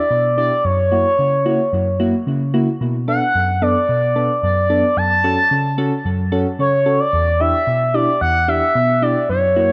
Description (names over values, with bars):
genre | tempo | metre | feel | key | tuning
pop | 111 BPM | 4/4 | straight | unclear | A4 = 440 Hz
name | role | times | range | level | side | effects
expressive synth lead | melody | 0.0-9.7 s | C#5 to A5 | -19 LUFS | equal | chorus, dub echo
soft electric-piano-like synth keys | accompaniment | 0.1-9.7 s | E2 to A4 | -21 LUFS | equal | chorus, phaser, dub echo
room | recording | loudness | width
wet spring reverb, RT60 1.3 s | echo-heavy mix | -17 LUFS | mono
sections
0.0-9.7 A section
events
none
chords
0.0 Em7; 0.6 F#7; 2.8 Bm7; 5.0 F#m; 7.1 Em7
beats
0.10 | 0.65 1.19 1.73 2.27 | 2.81 3.35 3.89 4.43 | 4.97 5.51 6.05 6.59 | 7.13 7.67 8.21 8.75 | 9.29